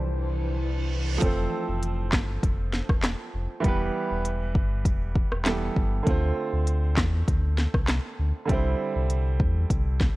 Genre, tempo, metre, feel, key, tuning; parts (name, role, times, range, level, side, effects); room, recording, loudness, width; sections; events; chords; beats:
dancehall; 99 BPM; 4/4; straight; A4 = 440 Hz
clear grand piano; accompaniment; 0.0-10.2 s; D3 to C5; -31 LUFS; right 3 dB
granular cloud pad; sustained chords; 0.0-1.2 s; E3 to C5; -36 LUFS; equal; built-in reverb, sidechain pumping
sub bass with octave; bass; 0.0-10.1 s; E1 to E2; -26 LUFS; equal
reverse cymbal; sound effects; 0.3-1.2 s; -38 LUFS; right 4 dB
afro-pop drum kit; drums; 1.2-10.2 s; handclaps, hi-hat, kick drum, rim click, snare drum; -25 LUFS; equal
little or no reverb; worn, warbling old tape, cassette tape, warbly pitch drift; -23 LUFS; side -19 dB against mid
0.0-1.2 A section; 1.2-10.2 B section
reverse cymbal 0.3-1.2
0.0 Cadd9; 1.2 F; 3.6 Em; 6.1 Dm7; 8.5 Cadd9
0.01 0.61 | 1.22 1.82 2.43 3.04 | 3.64 4.25 4.86 5.46 | 6.07 6.67 7.28 7.89 | 8.49 9.10 9.70